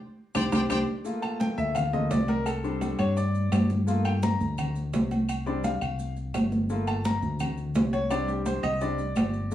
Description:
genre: latin, salsa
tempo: 170 BPM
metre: 4/4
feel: straight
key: unclear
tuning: A4 = 441 Hz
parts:
  - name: bright upright piano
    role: accompaniment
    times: 0.3-9.5 s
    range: G3 to Bb5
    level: -29 LUFS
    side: left 2 dB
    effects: none
  - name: claves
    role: percussion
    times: 0.3-9.3 s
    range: none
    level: -41 LUFS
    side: left 3 dB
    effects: none
  - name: congas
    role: percussion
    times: 0.3-9.5 s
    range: none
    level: -29 LUFS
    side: right 1 dB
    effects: none
  - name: maracas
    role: percussion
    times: 0.3-9.5 s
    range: none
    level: -50 LUFS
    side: right 4 dB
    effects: none
  - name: timbales and agogo bells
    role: percussion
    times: 0.3-9.3 s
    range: none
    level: -35 LUFS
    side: right 3 dB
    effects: none
  - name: bright trumpet section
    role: melody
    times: 0.4-0.8 s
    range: C5 to G5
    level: -32 LUFS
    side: left 1 dB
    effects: none
  - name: fingered electric bass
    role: bass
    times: 0.4-9.5 s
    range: G1 to G2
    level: -29 LUFS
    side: equal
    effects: none
room: moderate studio reverb, RT60 0.9 s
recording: small room reverb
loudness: -24 LUFS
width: side -12 dB against mid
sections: 0.0-1.1 A section; 1.1-9.5 B section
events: drum fill 0.0-1.1; band accent 0.0-1.1; upright piano solo 1.1-9.5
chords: 0.0 Csus2; 1.1 C13sus4; 2.5 Csus2; 3.9 Gm7; 5.3 Csus2; 6.7 Gm7; 8.1 Csus2

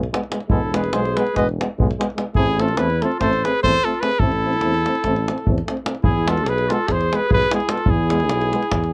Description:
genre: balkan folk, Balkan brass band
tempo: 293 BPM (eighths)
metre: 9/8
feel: straight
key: unclear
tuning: A4 = 440 Hz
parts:
  - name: warm tuba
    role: bass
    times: 0.0-8.9 s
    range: E1 to E2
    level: -26 LUFS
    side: equal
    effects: none
  - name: davul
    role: percussion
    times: 0.0-8.9 s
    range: none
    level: -25 LUFS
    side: equal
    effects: none
  - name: clear euphonium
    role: accompaniment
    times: 0.1-8.6 s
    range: G#3 to A3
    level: -29 LUFS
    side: equal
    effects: none
  - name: warm euphonium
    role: accompaniment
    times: 0.1-8.6 s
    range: B3 to C4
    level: -30 LUFS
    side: equal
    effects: none
  - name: warm cornet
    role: melody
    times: 0.5-8.9 s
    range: G#4 to D#5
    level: -24 LUFS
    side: equal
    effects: none
  - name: mellow clarinet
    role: second line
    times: 0.5-8.9 s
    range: E4 to B4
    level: -28 LUFS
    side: equal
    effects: none
room: light reverb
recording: close, detailed microphones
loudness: -20 LUFS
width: mono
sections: 0.0-6.0 A section; 6.0-8.9 A section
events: none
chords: 0.0 E; 2.4 Am; 6.0 E

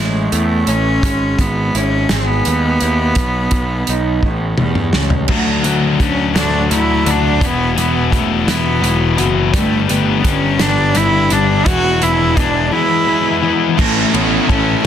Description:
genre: quiet-loud alternative rock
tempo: 56 BPM (dotted quarters)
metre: 6/8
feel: straight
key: A lydian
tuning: A4 = 440 Hz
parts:
  - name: warm cello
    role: melody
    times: 0.0-14.9 s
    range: G#3 to F#4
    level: -18 LUFS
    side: right 1 dB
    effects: none
  - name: electric guitar through a small old amp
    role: arpeggios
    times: 0.0-13.8 s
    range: E2 to G#4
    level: -23 LUFS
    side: right 1 dB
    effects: wide subtle chorus
  - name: fuzz picked electric bass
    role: bass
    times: 0.0-14.9 s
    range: E1 to E2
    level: -18 LUFS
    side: equal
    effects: overdrive
  - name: loose indie drum kit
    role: drums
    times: 0.3-14.9 s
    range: crash cymbal, hi-hat, kick drum, ride cymbal, snare drum, toms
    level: -18 LUFS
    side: right 1 dB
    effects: none
  - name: distorted electric guitar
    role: riff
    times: 5.3-14.9 s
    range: D3 to A4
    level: -17 LUFS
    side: left 10 dB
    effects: distortion
  - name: thick fuzz guitar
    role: riff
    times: 13.8-14.9 s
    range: A3 to A4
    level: -19 LUFS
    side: right 15 dB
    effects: distortion
room: light reverb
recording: dense, heavily limited modern master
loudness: -12 LUFS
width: side -9 dB against mid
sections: 0.0-5.3 A section; 5.3-13.8 B section; 13.8-14.9 C section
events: drum fill 4.2-5.3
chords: 0.0 A; 1.0 E/G#; 3.2 B; 4.2 A7; 5.3 D; 7.4 Esus2; 9.5 G; 11.7 E; 13.8 Aadd9

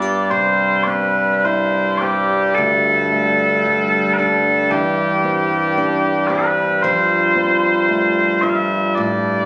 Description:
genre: celtic folk, Celtic slow air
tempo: 52-58 BPM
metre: 4/4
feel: rubato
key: unclear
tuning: A4 = 436 Hz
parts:
  - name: mellow small bagpipes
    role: melody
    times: 0.0-9.5 s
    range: G2 to F5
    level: -18 LUFS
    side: equal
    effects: none
  - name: flamenco guitar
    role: accompaniment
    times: 0.0-9.5 s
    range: D2 to G4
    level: -25 LUFS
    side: equal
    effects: none
room: moderate recital hall reverb, RT60 1.7 s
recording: recorded on a phone in the room, club reverb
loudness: -17 LUFS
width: mono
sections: 0.0-9.5 A section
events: none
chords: 0.3 C; 2.6 Gsus2/D; 6.8 F

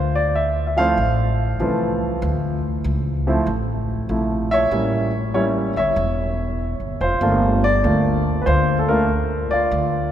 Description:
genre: jazz piano trio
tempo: 96 BPM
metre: 4/4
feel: swing 68% on 8ths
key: D minor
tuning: A4 = 440 Hz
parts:
  - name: warm baby grand piano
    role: melody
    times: 0.0-10.1 s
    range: C3 to F5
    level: -20 LUFS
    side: right 1 dB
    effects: none
  - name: upright bass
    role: bass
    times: 0.0-10.1 s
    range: E1 to D2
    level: -22 LUFS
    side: left 1 dB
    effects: none
room: wet cathedral reverb, RT60 4.8 s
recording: recorded in a church or concert hall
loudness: -18 LUFS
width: side -10 dB against mid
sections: 0.0-10.1 A section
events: none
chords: 0.0 Dm9; 4.7 A7b9; 7.2 Gm9

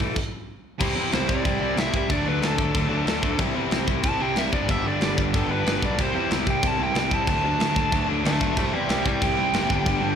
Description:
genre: punk rock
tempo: 185 BPM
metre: 4/4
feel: straight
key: unclear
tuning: A4 = 441 Hz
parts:
  - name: distorted electric guitar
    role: riff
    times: 0.0-10.2 s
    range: G2 to D4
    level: -31 LUFS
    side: right 12 dB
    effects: distortion, slapback echo
  - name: overdriven electric guitar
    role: riff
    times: 0.0-10.2 s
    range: G2 to E4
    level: -28 LUFS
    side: left 13 dB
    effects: slapback echo
  - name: fuzz picked electric bass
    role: bass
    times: 0.0-10.2 s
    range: F#1 to E2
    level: -28 LUFS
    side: equal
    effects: overdrive
  - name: tight metal drum kit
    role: drums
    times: 0.0-9.9 s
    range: crash cymbal, hi-hat, kick drum, snare drum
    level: -26 LUFS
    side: equal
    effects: none
  - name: crunchy overdriven guitar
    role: riff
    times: 0.8-10.2 s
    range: G2 to E4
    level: -31 LUFS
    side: equal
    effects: slapback echo
  - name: dark smooth lead guitar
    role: melody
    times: 1.1-10.2 s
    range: A4 to A5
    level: -27 LUFS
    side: right 2 dB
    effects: overdrive, slapback echo, ping-pong delay
room: light reverb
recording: live gig heard through the venue's PA, club reverb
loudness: -21 LUFS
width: side -8 dB against mid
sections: 0.8-10.2 A section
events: stop 0.2-0.8; lead electric guitar solo 0.8-10.2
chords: 0.0 A5; 0.8 C; 2.1 D; 3.4 C; 4.5 G; 6.0 C; 7.3 D; 8.6 C

